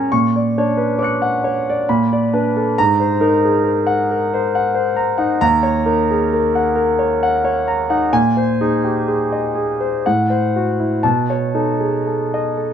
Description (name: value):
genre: classical, impressionist solo piano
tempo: 59-72 BPM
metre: 3/4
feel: rubato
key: unclear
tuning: A4 = 436 Hz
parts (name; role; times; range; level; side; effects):
- clear concert grand piano; solo; 0.0-12.7 s; Eb2 to C#7; -15 LUFS; equal; none
room: light reverb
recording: minimal, uncompressed stereo recording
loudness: -15 LUFS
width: side -8 dB against mid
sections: 0.0-12.7 A section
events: none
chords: 0.1 Dmaj7/Bb; 1.9 Cbmmaj7/Bb; 2.8 Ab9; 5.4 Ebm7; 8.1 Bb11; 10.0 Am6; 11.0 B9